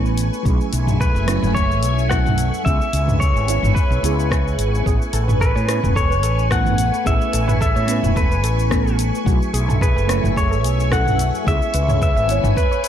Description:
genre	sunset chillout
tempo	109 BPM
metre	4/4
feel	swing 54% on 16ths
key	A major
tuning	A4 = 441 Hz
part	mellow FM electric piano	accompaniment	0.0-12.9 s	F#3 to C#5	-25 LUFS	moving between left 3 dB and right 4 dB	chorus, phaser, auto-pan, ping-pong delay
part	soft string machine	sustained chords	0.0-12.9 s	A3 to C#6	-27 LUFS	right 1 dB	phaser, ensemble chorus
part	mellow fretless electric bass	bass	0.0-12.5 s	E1 to A2	-20 LUFS	equal	none
part	deep house drum kit	drums	0.1-12.9 s	cabasa, hi-hat, rim click, toms	-24 LUFS	equal	none
part	electronic kick drum	drums	0.5-12.7 s	none	-20 LUFS	equal	none
part	pedal steel guitar	melody	1.0-12.9 s	B4 to F#5	-23 LUFS	left 2 dB	ping-pong delay
part	soft round pluck	arpeggios	4.9-12.9 s	F#4 to E5	-30 LUFS	right 4 dB	chorus, ping-pong delay
room	light reverb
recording	dark, warm production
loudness	-16 LUFS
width	side -10 dB against mid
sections	0.0-12.9 A section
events	none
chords	0.5 B13sus4; 2.7 C#m7; 4.9 Amaj9; 9.3 B13sus4; 11.5 C#m7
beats	| 0.46 1.00 1.55 2.11 | 2.66 3.21 3.76 4.31 | 4.86 5.41 5.96 6.51 | 7.06 7.61 8.16 8.71 | 9.26 9.81 10.36 10.91 | 11.46 12.01 12.56

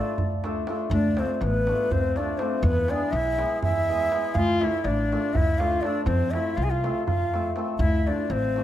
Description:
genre	balkan folk, Balkan wedding band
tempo	244 BPM (eighths)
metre	7/8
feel	straight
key	D dorian sharp4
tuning	A4 = 436 Hz
part	breathy bright low ney	melody	0.0-8.6 s	B4 to G#5	-27 LUFS	right 1 dB	none
part	hammered dulcimer	accompaniment	0.0-8.6 s	G#3 to A4	-31 LUFS	left 2 dB	none
part	upright bass	bass	0.2-8.6 s	A1 to F2	-27 LUFS	equal	none
part	darbuka	percussion	0.2-8.6 s	none	-30 LUFS	right 2 dB	none
part	bright clarinet	second line	0.9-8.6 s	B3 to G#4	-30 LUFS	left 4 dB	none
room	moderate recital hall reverb, RT60 1.6 s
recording	none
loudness	-22 LUFS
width	side -12 dB against mid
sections	0.9-8.6 A section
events	none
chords	0.0 Dm; 2.6 E; 4.3 Dm; 6.1 F; 7.8 Dm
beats	0.17 0.42 0.67 | 0.91 1.16 1.40 1.65 1.89 2.14 2.38 | 2.63 2.88 3.12 3.37 3.61 3.86 4.10 | 4.35 4.59 4.84 5.09 5.33 5.58 5.83 | 6.07 6.32 6.56 6.81 7.06 7.30 7.55 | 7.80 8.04 8.29 8.54

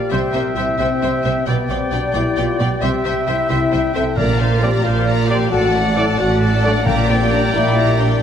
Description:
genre	cinematic, heroic adventure film score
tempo	89 BPM (dotted quarters)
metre	6/8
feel	straight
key	unclear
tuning	A4 = 436 Hz
part	clear oboe	second line	0.0-8.2 s	F5 to G5	-28 LUFS	equal	none
part	flute section	second line	0.0-8.2 s	Bb4 to G5	-27 LUFS	left 2 dB	none
part	mellow clarinet	second line	0.0-8.2 s	D5 to E5	-29 LUFS	left 2 dB	none
part	clear trombone section	sustained chords	0.0-8.2 s	F3 to C4	-29 LUFS	right 4 dB	none
part	mellow French horn section	sustained chords	0.0-8.2 s	Bb3 to Bb4	-22 LUFS	left 4 dB	none
part	concert harp	arpeggios	0.0-8.2 s	A2 to G4	-26 LUFS	left 5 dB	none
part	clear trumpet	stabs	0.0-8.2 s	D5 to E5	-24 LUFS	equal	none
part	rich symphonic violin section	melody	0.1-8.2 s	E5 to Bb5	-29 LUFS	left 2 dB	none
part	warm symphonic violin section	second line	0.1-8.2 s	A4 to E5	-29 LUFS	left 2 dB	none
part	rich symphonic viola section	accompaniment	0.1-8.2 s	A4 to D5	-27 LUFS	left 1 dB	none
part	rich symphonic cello section	bass	0.1-8.2 s	A2 to C3	-23 LUFS	right 2 dB	none
part	rich symphonic double bass section	bass	0.1-8.1 s	A1 to C2	-22 LUFS	right 3 dB	none
part	timpani	percussion	4.2-4.8, 6.9-7.5 s	Bb2	-24 LUFS	left 1 dB	none
room	wet scoring stage reverb, RT60 1.5 s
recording	none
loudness	-14 LUFS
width	side -8 dB against mid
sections	0.0-8.2 A section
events	none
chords	0.1 C; 1.5 G/B; 2.8 C; 4.2 Bbadd9; 5.5 D/A; 6.9 Gm/Bb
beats	| 0.12 0.80 | 1.48 2.15 | 2.83 3.50 | 4.18 4.85 | 5.52 6.20 | 6.87 7.55

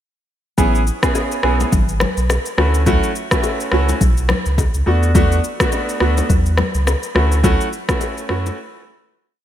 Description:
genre	afrobeats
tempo	105 BPM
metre	4/4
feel	swing 58% on 16ths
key	unclear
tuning	A4 = 438 Hz
part	clear concert grand piano	accompaniment	0.6-8.6 s	A3 to G#4	-20 LUFS	equal	wide subtle chorus
part	warm sub bass	bass	0.6-8.5 s	G#1 to F#2	-17 LUFS	equal	none
part	afro-pop drum kit	drums	0.6-8.6 s	kick drum, rim click, shaker	-19 LUFS	equal	gated reverb
part	congas and bongos	percussion	0.6-8.6 s	none	-25 LUFS	left 6 dB	none
room	light reverb, small room ambience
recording	bright 1980s-style digital production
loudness	-15 LUFS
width	side -11 dB against mid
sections	0.6-9.4 verse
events	fade-out 7.4-9.4; break 8.6-9.4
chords	0.6 Amaj9; 2.6 Dmaj7; 4.9 E7sus4; 7.2 Dmaj7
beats	| 0.58 1.15 1.72 2.29 | 2.87 3.44 4.01 4.58 | 5.15 5.72 6.29 6.87 | 7.44 8.01

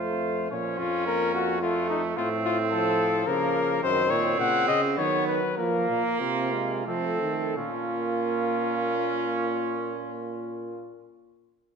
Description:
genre	classical, imitative canzona for brass ensemble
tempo	82-110 BPM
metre	3/4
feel	straight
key	Bb minor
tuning	A4 = 439 Hz
part	mellow cornet	melody	0.0-11.0 s	Eb4 to Gb5	-28 LUFS	left 6 dB	none
part	warm trumpet	second line	0.0-11.0 s	A3 to F4	-30 LUFS	right 7 dB	none
part	warm trombone	accompaniment	0.0-11.0 s	Db3 to C4	-32 LUFS	right 2 dB	none
part	dark euphonium	bass	0.0-11.0 s	F2 to F3	-30 LUFS	right 3 dB	none
room	wet scoring stage reverb, RT60 1.6 s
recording	none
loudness	-24 LUFS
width	side -6 dB against mid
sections	0.5-7.6 A section; 7.6-11.8 B section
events	slowing down 3.0-7.6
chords	0.0 F; 0.5 Bbm; 1.6 F; 2.2 F/A; 3.3 Bbm/Db; 3.8 Gb; 5.0 B/D#; 5.6 Fsus4; 6.9 F; 7.6 Bbm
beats	| 0.51 1.06 1.62 | 2.18 2.73 3.28 | 3.83 4.39 4.97 | 5.58 6.21 6.87 | 7.58 8.30 9.02 | 9.75 10.47

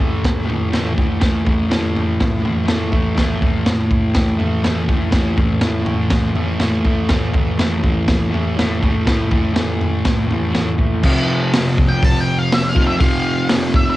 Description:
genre	garage rock duo or trio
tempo	122 BPM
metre	4/4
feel	straight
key	A minor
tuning	A4 = 444 Hz
part	fuzz guitar	riff	0.0-14.0 s	F2 to A3	-18 LUFS	equal	distortion, cassette tape
part	crunchy breakbeat drum kit	drums	0.0-13.9 s	crash cymbal, hi-hat, kick drum, snare drum, toms	-17 LUFS	equal	cassette tape
part	octave-fuzz lead guitar	melody	11.9-14.0 s	E5 to A5	-21 LUFS	equal	distortion, cassette tape
room	light reverb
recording	home recording on cassette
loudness	-15 LUFS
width	side -16 dB against mid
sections	0.0-11.0 A section; 11.0-14.0 B section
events	none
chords	0.0 A5; 11.0 F5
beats	0.24 0.73 | 1.22 1.71 2.20 2.69 | 3.18 3.67 4.16 4.65 | 5.14 5.63 6.12 6.61 | 7.10 7.60 8.09 8.58 | 9.07 9.56 10.05 10.54 | 11.04 11.53 12.02 12.51 | 13.00 13.49

